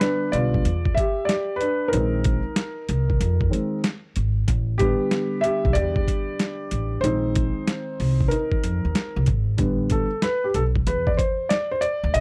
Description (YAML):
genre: hip hop, jazz-hop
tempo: 94 BPM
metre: 4/4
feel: swing 66% on 16ths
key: unclear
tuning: A4 = 442 Hz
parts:
  - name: dark concert grand piano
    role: accompaniment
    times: 0.0-12.2 s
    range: D3 to E5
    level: -26 LUFS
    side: equal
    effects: none
  - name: boom bap sampler-style drum kit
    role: drums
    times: 0.0-12.2 s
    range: hi-hat, kick drum, snare drum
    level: -27 LUFS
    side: equal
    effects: overdrive
  - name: upright bass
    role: bass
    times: 0.3-12.2 s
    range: Ab1 to F2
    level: -26 LUFS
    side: equal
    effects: none
room: small room ambience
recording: dry, close 1970s-style studio recording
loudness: -23 LUFS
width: mono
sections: 0.0-9.6 A section; 9.6-12.2 B section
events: grand piano solo 0.0-9.6, 9.6-12.2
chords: 0.0 A9sus4 (rootless); 1.9 Bb9sus4; 4.5 A9sus4; 7.0 Bb9sus4; 9.6 A9sus4